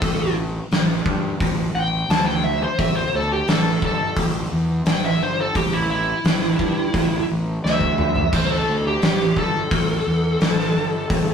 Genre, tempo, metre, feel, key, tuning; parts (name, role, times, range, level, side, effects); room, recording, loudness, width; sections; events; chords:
blues rock power trio and southern rock; 87 BPM; 4/4; straight; A4 = 438 Hz
smooth overdriven lead guitar; melody; 0.0-11.3 s; E4 to A5; -22 LUFS; right 1 dB
fuzz fingered electric bass; bass; 0.0-11.3 s; G1 to G2; -24 LUFS; equal; overdrive
oversized low-tuned drum kit; drums; 0.0-11.3 s; crash cymbal, hi-hat, kick drum, snare drum, toms; -21 LUFS; equal
moderate studio reverb, RT60 0.6 s; rough rehearsal-room recording; -18 LUFS; side -7 dB against mid
0.0-11.3 A section
lead electric guitar solo 0.0-11.3; drum fill 7.6-8.3
0.0 A5